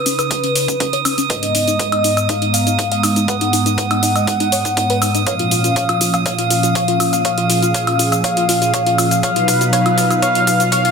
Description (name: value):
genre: progressive house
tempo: 121 BPM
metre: 4/4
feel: straight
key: G# dorian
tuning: A4 = 440 Hz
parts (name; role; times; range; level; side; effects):
- warm velvety synth lead; melody; 0.0-10.9 s; B4 to F#5; -19 LUFS; left 1 dB; chorus, digital delay
- warm analog pad; sustained chords; 0.0-10.9 s; G#2 to A#5; -19 LUFS; equal; chorus, sidechain pumping
- drifting glass-harmonics texture; texture; 0.0-10.9 s; D#6; -24 LUFS; right 9 dB; chorus, built-in reverb, sidechain pumping
- tight sequenced synth; arpeggios; 0.1-10.9 s; C#4 to E#5; -23 LUFS; left 2 dB; chorus, sidechain pumping, ping-pong delay
- electronic hi-hat, shaker and woodblock; drums; 0.1-10.9 s; none; -20 LUFS; equal; high-pass filter on hats, high-pass filter on perc, high-pass filter on room
- electronic kick drum; drums; 0.3-10.8 s; none; -26 LUFS; equal; overdrive, high-pass filter on kick
room: moderate lush hall reverb, RT60 2.0 s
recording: dense, heavily limited modern master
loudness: -13 LUFS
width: side -6 dB against mid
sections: 0.0-10.9 A section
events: build-up 0.0-10.9; filter sweep on synth arpeggio sound 0.0-10.9; filter sweep on analog synth pad 0.0-10.9; filter sweep on soft synth lead 0.0-10.9; drum fill 5.3-10.9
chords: 0.0 C#sus2; 1.3 G#madd9; 5.3 A#m; 9.2 B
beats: 0.31 0.80 | 1.30 1.79 2.29 2.79 | 3.28 3.78 4.27 4.77 | 5.27 5.76 6.26 6.75 | 7.25 7.75 8.24 8.74 | 9.23 9.73 10.22 10.72